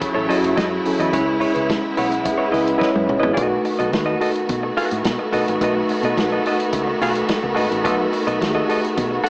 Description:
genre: disco.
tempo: 107 BPM.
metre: 4/4.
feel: straight.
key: unclear.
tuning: A4 = 436 Hz.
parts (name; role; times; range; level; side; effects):
mellow tine electric piano; accompaniment; 0.0-9.3 s; F#3 to F#5; -21 LUFS; equal; medium stereo tremolo.
semi-hollow electric guitar; accompaniment; 0.0-9.3 s; E4 to F#5; -23 LUFS; equal; spring reverb.
clear studio string section; sustained chords; 0.0-9.3 s; C#3 to F#4; -24 LUFS; equal; none.
vintage drum kit; drums; 0.0-9.3 s; hi-hat, kick drum, snare drum, toms; -26 LUFS; equal; none.
fingered electric bass; bass; 0.2-9.2 s; F#1 to B2; -28 LUFS; equal; none.
room: light reverb.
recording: small speaker sound.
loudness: -17 LUFS.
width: side -34 dB against mid.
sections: 0.0-3.4 A section; 3.4-9.3 B section.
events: tine electric piano fill 1.7-3.4; drum fill 2.8-3.4.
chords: 0.0 F#m7; 1.1 C#m7; 3.4 B7.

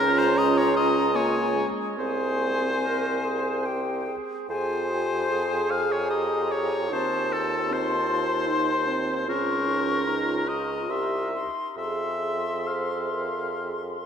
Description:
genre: classical, slow romantic movement for wind quintet.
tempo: 66-78 BPM.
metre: 3/4.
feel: rubato.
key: F minor.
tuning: A4 = 441 Hz.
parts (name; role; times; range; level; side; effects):
bright silver concert flute; melody; 0.0-14.1 s; G5 to Db6; -31 LUFS; left 5 dB; none.
clear oboe; second line; 0.0-14.0 s; A4 to F5; -28 LUFS; left 2 dB; none.
clear French horn; accompaniment; 0.0-14.1 s; Ab3 to C5; -31 LUFS; right 1 dB; none.
warm clarinet; accompaniment; 0.0-14.1 s; Eb4 to Bb4; -33 LUFS; right 3 dB; none.
warm bassoon; bass; 0.0-14.1 s; C2 to F2; -29 LUFS; right 3 dB; none.
room: wet cathedral reverb, RT60 5.5 s.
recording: in a vast, echoing space.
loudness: -23 LUFS.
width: side -8 dB against mid.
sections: 0.0-14.1 A section.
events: none.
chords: 0.0 Bbm/Db; 1.2 Db; 2.0 Abadd9/C; 3.6 C5; 4.5 Fm; 6.9 F7/Eb; 9.3 Bbm/Db; 10.9 C; 11.8 Fm.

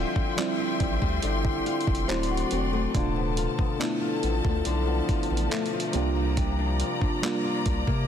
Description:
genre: contemporary R&B.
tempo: 70 BPM.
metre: 4/4.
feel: straight.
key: D minor.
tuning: A4 = 444 Hz.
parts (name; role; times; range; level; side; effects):
mellow FM electric piano; accompaniment; 0.0-8.1 s; B2 to F#4; -30 LUFS; right 4 dB; chorus, phaser.
rich studio string section; sustained chords; 0.0-8.1 s; F3 to C6; -32 LUFS; left 3 dB; none.
flamenco guitar; arpeggios; 0.0-8.1 s; C3 to F#4; -31 LUFS; left 10 dB; ping-pong delay.
saturated sub bass; bass; 0.0-8.1 s; D1 to C3; -29 LUFS; equal; none.
dusty soul sampler-style drum kit; drums; 0.2-8.1 s; handclaps, hi-hat, kick drum; -29 LUFS; equal; none.
synth chime; texture; 0.4-6.3 s; C5 to E5; -42 LUFS; equal; none.
room: little or no reverb.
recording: dense, heavily limited modern master.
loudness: -24 LUFS.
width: side -9 dB against mid.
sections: 0.0-8.1 A section.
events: none.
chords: 0.0 Dm11; 2.1 D7; 2.9 Dm69; 5.9 C9sus4.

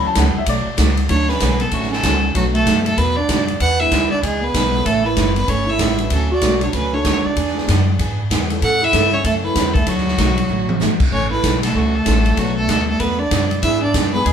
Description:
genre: country, western swing.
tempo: 192 BPM.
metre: 4/4.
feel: swing 62% on 8ths.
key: D major.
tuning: A4 = 440 Hz.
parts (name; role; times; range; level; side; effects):
dark upright piano; accompaniment; 0.0-14.3 s; E3 to A5; -27 LUFS; left 3 dB; none.
picked steel-string acoustic guitar; accompaniment; 0.0-14.3 s; B2 to A4; -26 LUFS; right 4 dB; none.
upright bass; bass; 0.0-14.3 s; F#1 to A2; -21 LUFS; equal; none.
swinging big-band drum kit; drums; 0.2-14.3 s; crash cymbal, hi-hat, kick drum, ride cymbal, snare drum, toms; -21 LUFS; equal; none.
clear fiddle; melody; 1.1-14.3 s; F#4 to F#5; -21 LUFS; equal; none.
breathy clarinet; second line; 1.1-14.3 s; F#3 to B4; -22 LUFS; right 4 dB; none.
room: moderate large studio reverb, RT60 1.2 s.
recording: band playing live in one room.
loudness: -15 LUFS.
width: side -8 dB against mid.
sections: 0.0-1.1 A section; 1.1-14.3 B section.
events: upright piano solo 0.0-1.1; drum fill 10.5-10.8.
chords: 0.0 Dmaj7; 2.4 Bm7; 3.6 E7; 4.9 A; 6.1 Dmaj7; 7.4 E7; 8.6 A; 9.9 Dadd9; 11.1 A; 12.4 Bm7; 13.6 E7.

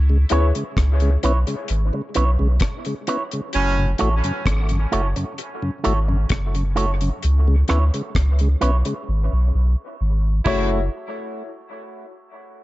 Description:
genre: dub reggae.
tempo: 65 BPM.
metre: 4/4.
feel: straight.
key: F# minor.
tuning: A4 = 441 Hz.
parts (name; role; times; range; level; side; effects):
warm sub bass; bass; 0.0-10.9 s; F#1 to D2; -18 LUFS; equal; none.
mellow tonewheel organ; accompaniment; 0.1-10.8 s; F#2 to F#4; -27 LUFS; left 1 dB; slow rotary speaker, dub echo.
electric guitar with an envelope filter; accompaniment; 0.3-10.8 s; E4 to C#5; -28 LUFS; right 4 dB; dub echo.
dark baby grand piano; stabs; 0.3-0.5, 10.5-10.8 s; E4 to C#5; -30 LUFS; left 6 dB; dub echo.
deep reggae drum kit; drums; 0.3-10.7 s; crash cymbal, hi-hat, kick drum, rim click; -24 LUFS; equal; none.
warm horn section; second line; 3.5-3.9, 10.5-10.8 s; A2 to E4; -28 LUFS; right 2 dB; dub echo.
room: little or no reverb.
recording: nothing above 7.7 kHz.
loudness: -18 LUFS.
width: side -17 dB against mid.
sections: 0.0-10.9 A section; 10.9-12.6 B section.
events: break 0.0-10.9; drums muted 9.1-10.9.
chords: 0.0 C#m7; 3.5 F#m7; 7.2 C#m7; 10.5 F#m7; 10.9 N.C..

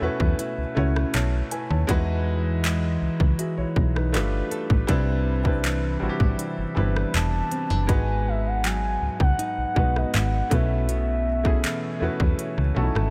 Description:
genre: contemporary R&B.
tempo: 80 BPM.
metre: 4/4.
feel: straight.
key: unclear.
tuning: A4 = 440 Hz.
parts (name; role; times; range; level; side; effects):
warm concert grand piano; accompaniment; 0.0-13.1 s; G3 to A5; -31 LUFS; equal; none.
nylon-string guitar; arpeggios; 0.0-13.1 s; G#2 to A4; -33 LUFS; equal; subtle chorus, diffuse ambient delay.
slap-like FM bass; bass; 0.0-13.1 s; E1 to E2; -27 LUFS; equal; none.
trap drum kit; drums; 0.2-13.1 s; handclaps, hi-hat, kick drum, rim click; -28 LUFS; equal; none.
gliding portamento lead; melody; 7.2-13.1 s; D#5 to A5; -32 LUFS; equal; chorus, diffuse ambient delay.
room: moderate cathedral reverb, RT60 4.7 s.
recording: dreamy mix soaked in reverb.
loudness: -24 LUFS.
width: mono.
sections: 0.0-13.1 A section.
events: none.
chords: 0.0 B9sus4; 4.1 G9; 4.9 Cmaj9; 7.9 G#m7; 10.5 B9sus4.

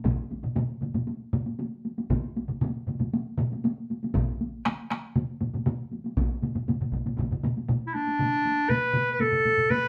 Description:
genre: japanese traditional, taiko drum ensemble.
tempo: 118 BPM.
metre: 4/4.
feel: straight.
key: unclear.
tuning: A4 = 438 Hz.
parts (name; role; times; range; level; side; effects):
taiko ensemble; percussion; 0.0-9.9 s; none; -34 LUFS; equal; none.
taiko ensemble; percussion; 0.0-9.8 s; none; -32 LUFS; equal; none.
taiko ensemble; percussion; 0.0-7.8 s; none; -37 LUFS; equal; none.
taiko ensemble; percussion; 0.0-7.3 s; none; -33 LUFS; equal; none.
bright clarinet; melody; 7.9-9.9 s; D4 to B4; -25 LUFS; equal; none.
room: wet studio reverb, RT60 0.6 s.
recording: band playing live in one room.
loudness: -28 LUFS.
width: mono.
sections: 0.0-8.2 A section; 8.2-9.9 B section.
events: none.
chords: none.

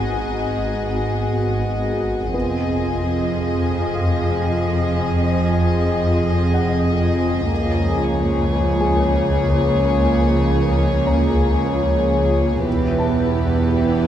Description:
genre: cinematic, suspense film score.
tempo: free time.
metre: none.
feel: none.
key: unclear.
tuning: A4 = 440 Hz.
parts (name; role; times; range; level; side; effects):
warm symphonic violin section; second line; 0.0-14.1 s; G4 to D#5; -24 LUFS; left 4 dB; none.
dark symphonic viola section; accompaniment; 0.0-14.1 s; F3 to F#4; -23 LUFS; right 1 dB; none.
glass harmonica; sustained chords; 0.0-14.1 s; G4 to Ab5; -28 LUFS; left 2 dB; none.
dark symphonic double bass section; bass; 0.0-14.1 s; E1 to C#2; -24 LUFS; right 2 dB; none.
warm symphonic cello section; bass; 0.0-14.1 s; C#2 to G#2; -25 LUFS; right 3 dB; none.
swarming drone; drone; 0.0-14.1 s; G#1 to F2; -23 LUFS; equal; built-in reverb.
dark grand piano; texture; 0.0-14.1 s; A#3 to A#5; -32 LUFS; left 2 dB; none.
riser; sound effects; 13.8-14.1 s; none; -40 LUFS; right 2 dB; none.
room: moderate scoring stage reverb, RT60 1.5 s.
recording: dark, warm production.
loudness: -17 LUFS.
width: side -10 dB against mid.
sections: 0.0-14.1 A section.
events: none.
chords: 0.0 G#m7; 2.3 Fm7; 7.5 C#6; 12.7 Em.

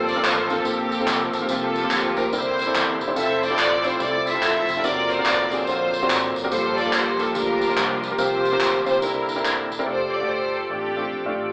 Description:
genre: uptempo gospel.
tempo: 143 BPM.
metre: 4/4.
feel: swing 63% on 8ths.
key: F major.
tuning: A4 = 441 Hz.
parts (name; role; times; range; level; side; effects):
clear studio string section; melody; 0.0-11.5 s; Bb3 to E5; -26 LUFS; equal; none.
warm upright piano; accompaniment; 0.0-11.5 s; G2 to C5; -28 LUFS; equal; none.
bright tonewheel organ; sustained chords; 0.0-11.5 s; D3 to G5; -30 LUFS; equal; fast rotary speaker, overdrive, chorus vibrato.
fingered electric bass; bass; 0.0-11.5 s; E1 to E2; -44 LUFS; equal; none.
tambourine and handclaps; percussion; 0.1-9.8 s; none; -28 LUFS; equal; none.
room: wet large studio reverb, RT60 0.9 s.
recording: band playing live in one room, AM radio sound.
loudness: -22 LUFS.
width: mono.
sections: 0.0-9.9 A section; 9.9-11.5 B section.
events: none.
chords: 0.0 Gm11; 1.5 C7sus4; 2.3 C9; 3.2 Fmaj7; 4.8 D7alt; 6.5 Gm9; 8.2 C7sus4; 9.0 C9; 9.9 F69.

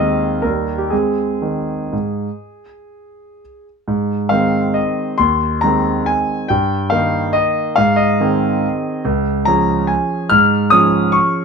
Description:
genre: classical, piano waltz.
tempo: 117-151 BPM.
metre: 3/4.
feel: rubato.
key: Ab major.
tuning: A4 = 437 Hz.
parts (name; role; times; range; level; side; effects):
clear concert grand piano; solo; 0.0-11.4 s; Db2 to F6; -14 LUFS; equal; none.
room: light reverb.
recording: dark, warm production.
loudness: -14 LUFS.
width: side -5 dB against mid.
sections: 0.0-3.9 A section; 3.9-11.4 B section.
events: none.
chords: 0.4 Eb; 0.9 Ab; 6.5 Eb/G; 7.8 Ab; 9.1 Db.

